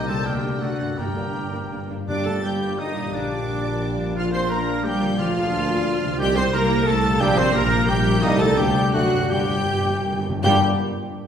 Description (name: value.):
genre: classical, dramatic, fast romantic movement for symphony orchestra.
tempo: 157-180 BPM.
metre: 3/4.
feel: rubato.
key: G minor.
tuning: A4 = 440 Hz.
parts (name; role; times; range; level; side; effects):
rich symphonic violin section; melody; 0.0-10.6 s; F#5 to C7; -31 LUFS; left 1 dB; none.
bright silver concert flute; second line; 0.0-10.6 s; D5 to G6; -30 LUFS; left 1 dB; none.
warm clarinet; second line; 0.0-10.6 s; D4 to C5; -31 LUFS; equal; none.
warm symphonic violin section; second line; 0.0-10.6 s; D5 to C6; -33 LUFS; left 1 dB; none.
dark French horn section; sustained chords; 0.0-10.6 s; G3 to G4; -31 LUFS; left 1 dB; none.
concert harp; arpeggios; 0.0-10.6 s; G2 to D5; -29 LUFS; left 5 dB; none.
mellow tuba; bass; 0.0-10.6 s; G1 to D2; -28 LUFS; right 1 dB; none.
rich symphonic cello section; bass; 0.0-10.6 s; G2 to C4; -28 LUFS; right 2 dB; none.
rich symphonic double bass section; bass; 0.0-10.6 s; G1 to G2; -29 LUFS; equal; none.
warm oboe; second line; 0.1-10.6 s; D4 to C5; -32 LUFS; right 2 dB; none.
rich symphonic viola section; accompaniment; 0.1-10.6 s; G3 to C5; -27 LUFS; right 2 dB; none.
timpani; percussion; 1.0-2.6, 5.2-5.7, 9.3-10.6 s; G2 to D3; -31 LUFS; left 2 dB; none.
dark trombone section; sustained chords; 2.1-10.6 s; G2 to A3; -32 LUFS; right 3 dB; none.
room: wet scoring stage reverb, RT60 1.8 s.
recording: heard from further back in the room.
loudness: -19 LUFS.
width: side -8 dB against mid.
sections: 0.0-2.1 A section; 2.1-10.4 A section.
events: slowing down 7.7-10.4; timpani fill 9.3-10.4.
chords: 0.3 Gm/D; 1.0 Gm; 3.1 Gm/Bb; 4.2 Bb; 5.2 Bb/D; 6.2 Cm7; 7.2 Gm/Bb; 8.2 Cm7; 8.6 Gm/D; 8.9 D; 9.3 Gm.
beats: 0.26 0.62 | 0.98 1.35 1.72 | 2.08 2.43 2.78 | 3.13 3.48 3.82 | 4.17 4.51 4.85 | 5.19 5.52 5.86 | 6.20 6.54 6.88 | 7.21 7.55 7.89 | 8.24 8.58 8.94 | 9.31 9.68 10.06 | 10.43.